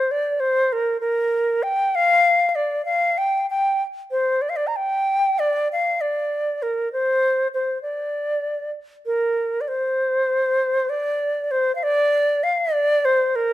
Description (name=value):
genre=chinese traditional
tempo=97 BPM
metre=2/4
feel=rubato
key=D jue mode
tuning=A4 = 440 Hz
part: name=bright reedy xiao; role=solo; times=0.0-13.5 s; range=Bb4 to Bb5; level=-19 LUFS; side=equal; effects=none
room=light reverb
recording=close, detailed microphones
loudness=-19 LUFS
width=side -14 dB against mid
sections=0.0-9.1 A section; 9.1-13.5 B section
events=none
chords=none